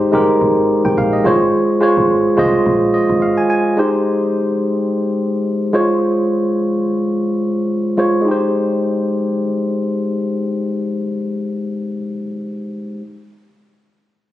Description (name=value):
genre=afrobeats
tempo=107 BPM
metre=4/4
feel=swing 55% on 16ths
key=Ab major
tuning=A4 = 440 Hz
part: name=tine electric piano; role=accompaniment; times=0.0-13.0 s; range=Ab3 to Ab5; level=-15 LUFS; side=equal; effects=none
part: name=deep log drum bass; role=bass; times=0.0-3.3 s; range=G1 to C2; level=-24 LUFS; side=equal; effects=none
room=light reverb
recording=recorded on a phone in the room, club reverb, compression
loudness=-14 LUFS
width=side -14 dB against mid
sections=0.0-3.8 A section; 3.8-8.3 B section; 8.3-10.5 C section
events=tine electric piano fill 2.7-3.8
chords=0.0 Abmaj7; 1.3 Bbm7/Ab; 3.8 Abmaj7; 5.7 Abadd11; 8.3 Abmaj7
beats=0.42 0.98 | 1.54 2.10 2.66 3.22 | 3.78 4.34 4.90 5.46 | 6.02 6.58 7.14 7.71 | 8.27 8.83 9.39 9.95